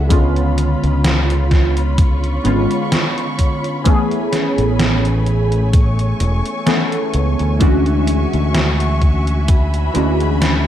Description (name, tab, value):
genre	vaporwave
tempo	64 BPM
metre	4/4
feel	swing 55% on 16ths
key	A major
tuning	A4 = 440 Hz
part	warbly lo-fi synth keys	accompaniment	0.0-10.7 s	D3 to A4	-19 LUFS	equal	phaser, analog chorus, analog delay
part	dark studio string section	sustained chords	0.0-10.7 s	A3 to C#6	-25 LUFS	equal	none
part	fingered electric bass	bass	0.0-10.7 s	E1 to D2	-17 LUFS	equal	none
part	electronic kick drum	drums	0.1-9.7 s	none	-13 LUFS	equal	none
part	gated 80s digital drum machine	drums	0.1-10.6 s	hi-hat, snare drum	-20 LUFS	equal	gated reverb, gated reverb snare
room	little or no reverb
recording	cassette tape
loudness	-14 LUFS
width	side -11 dB against mid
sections	0.0-10.7 A section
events	none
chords	0.1 C#7b9; 3.9 Amaj9; 7.6 Dmaj9#11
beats	| 0.11 1.05 1.99 2.92 | 3.86 4.80 5.74 6.67 | 7.61 8.55 9.48 10.42